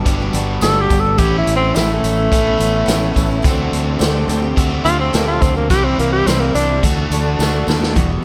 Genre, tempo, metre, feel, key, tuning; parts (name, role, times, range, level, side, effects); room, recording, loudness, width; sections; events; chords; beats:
folk rock and heartland rock; 106 BPM; 4/4; straight; A4 = 440 Hz
picked steel-string acoustic guitar; accompaniment; 0.0-8.2 s; E2 to G4; -24 LUFS; equal
tonewheel organ; sustained chords; 0.0-8.0 s; G3 to A4; -32 LUFS; equal
overdriven electric guitar; riff; 0.0-8.2 s; E2 to G4; -25 LUFS; equal
fingered electric bass; bass; 0.1-8.2 s; E1 to Eb2; -22 LUFS; equal
vintage drum kit; drums; 0.1-8.1 s; hi-hat, kick drum, snare drum; -22 LUFS; equal
tambourine; percussion; 0.3-7.8 s; -36 LUFS; equal
breathy tenor saxophone; melody; 0.6-6.8 s; A3 to A4; -20 LUFS; equal; slapback echo
light reverb, studio ambience; -16 LUFS; mono
0.0-8.0 A section
tenor saxophone solo 0.0-8.0; drum fill 7.4-8.0
0.0 Gmaj7; 1.2 Aadd9; 3.4 D7sus4; 5.7 C; 6.8 D
0.06 0.62 | 1.19 1.75 2.32 2.88 | 3.45 4.01 4.58 5.14 | 5.71 6.27 6.84 7.40 | 7.97